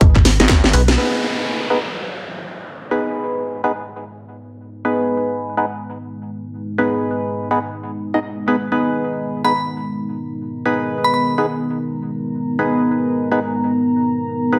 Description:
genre	bass house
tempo	124 BPM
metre	4/4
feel	swing 61% on 16ths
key	G# minor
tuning	A4 = 440 Hz
part	deep dark ambient pad	sustained chords	0.0-14.6 s	G#3 to A#5	-26 LUFS	equal	chorus, built-in reverb, sidechain pumping
part	metallic FM bass	bass	0.0-1.0 s	G#1 to B1	-18 LUFS	equal	overdrive, sidechain pumping
part	electronic kick drum	drums	0.0-0.6 s	none	-15 LUFS	equal	none
part	garage drum kit	drums	0.0-1.0 s	handclaps, hi-hat, snare drum	-19 LUFS	equal	none
part	percussive organ stab	stabs	0.4-14.6 s	B3 to D#5	-22 LUFS	equal	chorus, phaser, sidechain pumping, tape echo
part	growling FM bass	bass	0.4-0.7 s	G#1	-20 LUFS	equal	overdrive, sidechain pumping
part	downlifter	sound effects	1.0-4.8 s	none	-28 LUFS	equal	none
part	glassy synth bell	melody	9.4-11.2 s	B5	-22 LUFS	equal	chorus, tremolo
room	wet digital room reverb, RT60 1.1 s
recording	none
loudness	-19 LUFS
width	mono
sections	1.0-14.6 A section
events	drum fill 0.3-1.0; band accent 0.9; filter sweep on ambient pad 1.0-14.6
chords	0.0 G#m

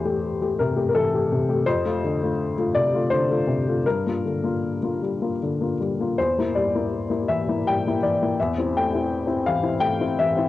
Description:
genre	neoclassical minimalist piano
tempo	76-85 BPM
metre	3/4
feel	rubato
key	unclear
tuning	A4 = 440 Hz
part	warm upright piano	solo	0.0-10.5 s	E2 to G5	-20 LUFS	left 2 dB	none
room	moderate studio ambience, RT60 0.5 s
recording	home recording on cassette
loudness	-21 LUFS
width	side -14 dB against mid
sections	0.0-10.5 A section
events	none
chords	0.0 Am7/E; 1.7 Dm7/F; 3.8 Gm7; 6.2 Edim; 8.4 Am7/E

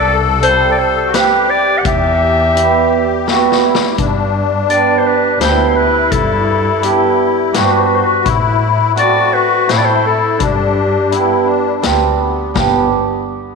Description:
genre	klezmer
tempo	84 BPM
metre	3/4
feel	straight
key	E minor, G major from 4.0 s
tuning	A4 = 439 Hz
part	dark clarinet	melody	0.0-12.9 s	G4 to F#5	-16 LUFS	left 1 dB	tape echo
part	musette accordion	second line	0.0-12.9 s	B3 to A4	-16 LUFS	left 11 dB	tape echo
part	warm double bass	bass	0.0-12.9 s	G1 to A2	-20 LUFS	left 1 dB	none
part	cimbalom	accompaniment	0.4-12.9 s	G3 to B4	-16 LUFS	right 12 dB	none
part	street-band drum kit	drums	0.4-12.7 s	hi-hat, kick drum, snare drum	-20 LUFS	left 5 dB	none
room	moderate echo chamber reverb, RT60 1.8 s, small room ambience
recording	1960s-style stereo with parts hard left and right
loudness	-11 LUFS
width	side -4 dB against mid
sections	0.0-4.0 A section; 4.0-12.6 B section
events	drum fill 3.3-4.0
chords	0.0 C; 1.8 Em; 4.0 G; 8.3 Am; 10.4 G

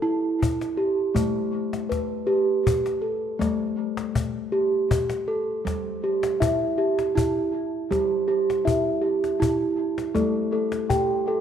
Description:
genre	world meditative, meditative tuned percussion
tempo	53 BPM (dotted quarters)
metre	6/8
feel	straight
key	unclear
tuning	A4 = 438 Hz
part	steel tongue drum	arpeggios	0.0-11.4 s	G3 to G5	-22 LUFS	right 1 dB	diffuse ambient delay
part	cajon	percussion	0.4-11.1 s	none	-27 LUFS	left 3 dB	none
room	wet echo chamber reverb, RT60 1.6 s, small room ambience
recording	none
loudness	-22 LUFS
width	side -8 dB against mid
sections	0.0-5.7 A section; 5.7-11.4 B section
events	none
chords	0.0 Emadd11/G; 1.2 Gadd9; 5.7 Em/G; 10.2 Gsus2

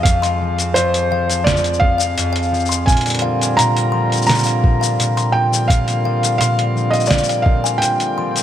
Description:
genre	folktronica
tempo	85 BPM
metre	4/4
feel	straight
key	unclear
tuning	A4 = 440 Hz
part	felt-muted upright piano	melody	0.0-8.4 s	C5 to Bb5	-19 LUFS	right 1 dB	digital delay
part	music box	second line	0.0-8.3 s	F5 to C6	-25 LUFS	left 8 dB	tape echo
part	pedal harmonium	sustained chords	0.0-8.4 s	D3 to Ab4	-25 LUFS	right 4 dB	none
part	concert harp	arpeggios	0.0-8.4 s	F2 to F4	-20 LUFS	left 1 dB	vintage 12-bit sampler grit
part	electronic kick drum	drums	0.1-7.6 s	none	-15 LUFS	equal	overdrive
part	lo-fi sampler-style drum kit	drums	0.1-8.4 s	hi-hat, shaker, snare drum	-20 LUFS	left 1 dB	overdrive
room	moderate concert hall reverb, RT60 2.0 s, studio ambience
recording	none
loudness	-14 LUFS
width	side -10 dB against mid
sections	0.0-8.4 A section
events	none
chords	0.0 Fm; 2.9 Bb

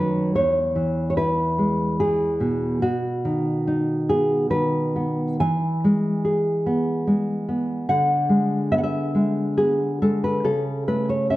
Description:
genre	romantic piece for solo classical guitar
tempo	71 BPM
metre	3/4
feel	uneven beats, rubato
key	E major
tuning	A4 = 435 Hz
part	nylon-string guitar	solo	0.0-11.4 s	E2 to G#5	-20 LUFS	equal	none
room	moderate recital hall reverb, RT60 1.4 s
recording	dark, warm production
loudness	-20 LUFS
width	side -16 dB against mid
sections	0.0-11.4 A section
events	none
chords	0.4 E; 2.8 B; 5.4 E; 7.9 E9/D; 10.4 A/C#

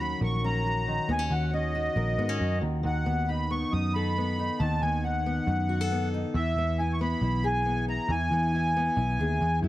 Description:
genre	indie folk with a building arrangement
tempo	137 BPM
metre	4/4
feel	straight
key	unclear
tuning	A4 = 437 Hz
part	accordion	melody	0.0-9.6 s	D#5 to D#6	-30 LUFS	equal	light tremolo tuning
part	fingerpicked steel-string acoustic guitar	accompaniment	0.0-9.7 s	D#3 to A#4	-32 LUFS	left 3 dB	none
part	picked electric bass	bass	0.0-9.7 s	A#1 to G#2	-28 LUFS	right 1 dB	none
room	small room ambience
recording	none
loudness	-25 LUFS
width	side -15 dB against mid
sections	0.0-9.7 A section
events	none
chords	0.0 D#m7; 2.8 B7/D#; 6.3 E

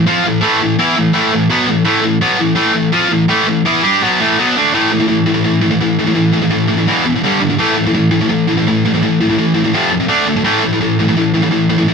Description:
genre	metal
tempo	168 BPM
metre	4/4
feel	straight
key	A minor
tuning	A4 = 439 Hz
part	high-gain distorted guitar	solo	0.0-11.9 s	E2 to G4	-11 LUFS	equal	distortion
room	wet small room reverb, RT60 0.5 s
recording	band playing live in one room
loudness	-11 LUFS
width	side -5 dB against mid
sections	0.0-4.7 A section; 4.7-11.9 B section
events	none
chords	0.0 A5; 6.9 E5; 7.2 G5; 7.6 A5; 9.7 F5; 10.1 D5; 10.5 A5

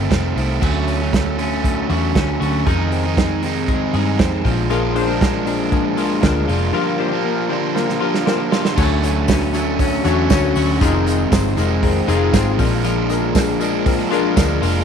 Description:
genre	jangly indie pop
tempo	118 BPM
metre	4/4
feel	straight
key	unclear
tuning	A4 = 440 Hz
part	overdriven electric guitar	accompaniment	0.0-14.8 s	F2 to Eb4	-21 LUFS	right 10 dB	none
part	twelve-string electric guitar	arpeggios	0.0-14.8 s	Eb3 to Ab4	-23 LUFS	left 11 dB	none
part	vintage muted picked electric bass	bass	0.0-14.8 s	F1 to G2	-21 LUFS	left 1 dB	none
part	loose indie drum kit	drums	0.1-14.7 s	crash cymbal, hi-hat, kick drum, snare drum	-20 LUFS	right 2 dB	none
part	warm analog keys	accompaniment	4.7-14.8 s	D4 to C#5	-22 LUFS	left 11 dB	chorus
part	tambourine	percussion	8.8-14.7 s	none	-38 LUFS	left 13 dB	none
room	light reverb, small room ambience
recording	1960s-style stereo with parts hard left and right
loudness	-15 LUFS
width	side -7 dB against mid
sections	0.6-8.8 A section; 8.8-14.8 B section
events	drum fill 7.8-8.8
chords	0.0 F7; 0.6 Dmaj7; 2.7 Fm7; 4.4 Bb7; 6.7 Gm7; 8.8 Dmaj7; 10.8 Fm7; 12.6 Bb7

